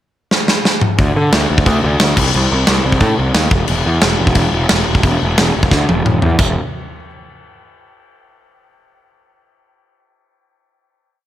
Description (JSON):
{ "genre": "punk rock", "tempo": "178 BPM", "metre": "4/4", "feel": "straight", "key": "unclear", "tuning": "A4 = 441 Hz", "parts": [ { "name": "big rock drum kit", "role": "drums", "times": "0.3-6.5 s", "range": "crash cymbal, kick drum, snare drum, toms", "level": "-14 LUFS", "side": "equal", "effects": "none" }, { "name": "fuzz picked electric bass", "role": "bass", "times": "1.0-6.5 s", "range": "E1 to D3", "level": "-15 LUFS", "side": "equal", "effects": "overdrive" } ], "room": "little or no reverb", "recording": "none", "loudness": "-11 LUFS", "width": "side -12 dB against mid", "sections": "0.0-1.0 pickup bar; 1.0-6.4 riff; 6.4-7.8 final note", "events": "drum fill 0.3-1.0, 5.7-6.4", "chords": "none", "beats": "0.32 0.66 | 0.99 1.33 1.67 2.01 | 2.34 2.68 3.02 3.35 | 3.69 4.03 4.37 4.70 | 5.04 5.38 5.72 6.05 | 6.39" }